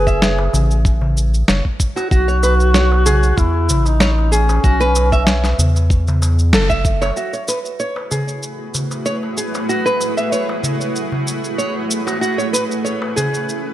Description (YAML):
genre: organic downtempo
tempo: 95 BPM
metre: 4/4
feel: swing 53% on 16ths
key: F# minor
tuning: A4 = 444 Hz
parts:
  - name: dark duduk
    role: melody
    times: 0.0-5.6 s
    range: C#4 to G#4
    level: -20 LUFS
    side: equal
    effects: tape echo
  - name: nylon-string guitar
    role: arpeggios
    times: 0.0-13.7 s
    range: F#4 to E5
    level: -21 LUFS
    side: right 1 dB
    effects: low-pass filter, tape echo
  - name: round analog bass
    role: bass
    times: 0.0-7.1 s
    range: F#1 to E2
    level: -15 LUFS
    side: equal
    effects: tube saturation, sidechain pumping
  - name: electronic cabasa and snare drum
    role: drums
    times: 0.1-13.6 s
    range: none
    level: -20 LUFS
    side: equal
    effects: studio reverb
  - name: electronic kick drum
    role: drums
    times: 0.1-7.0 s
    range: none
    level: -16 LUFS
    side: equal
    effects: studio reverb
  - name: darbuka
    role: percussion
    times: 0.4-13.3 s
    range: none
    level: -25 LUFS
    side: left 1 dB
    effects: none
  - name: granular cloud pad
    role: sustained chords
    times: 8.3-13.7 s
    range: A3 to B4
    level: -22 LUFS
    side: right 1 dB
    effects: built-in reverb, sidechain pumping
room: light reverb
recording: none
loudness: -14 LUFS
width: side -13 dB against mid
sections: 0.0-7.2 A section; 7.2-13.7 B section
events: band accent 6.5-6.8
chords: 0.0 F#madd9; 2.1 B9sus4; 7.2 F#m11